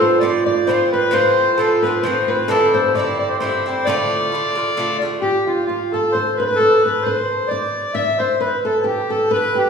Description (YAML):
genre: celtic folk, Celtic waltz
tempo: 132 BPM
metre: 3/4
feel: swing 55% on 8ths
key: D dorian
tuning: A4 = 439 Hz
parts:
  - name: accordion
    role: melody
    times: 0.0-9.7 s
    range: F4 to E5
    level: -17 LUFS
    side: equal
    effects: none
  - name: Celtic harp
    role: second line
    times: 0.0-9.7 s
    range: F4 to E5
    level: -26 LUFS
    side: right 2 dB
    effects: none
  - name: flamenco guitar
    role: second line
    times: 0.0-9.7 s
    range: F4 to E5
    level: -23 LUFS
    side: left 4 dB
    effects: none
  - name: Irish bouzouki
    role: accompaniment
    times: 0.0-5.2 s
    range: G2 to F4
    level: -21 LUFS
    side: right 3 dB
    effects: none
room: wet recital hall reverb, RT60 1.6 s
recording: recorded in a church or concert hall, small room reverb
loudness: -15 LUFS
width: side -6 dB against mid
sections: 0.0-5.2 A section; 5.2-9.7 B section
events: none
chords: 0.0 F; 2.5 Cadd9; 3.9 Dm; 5.2 N.C.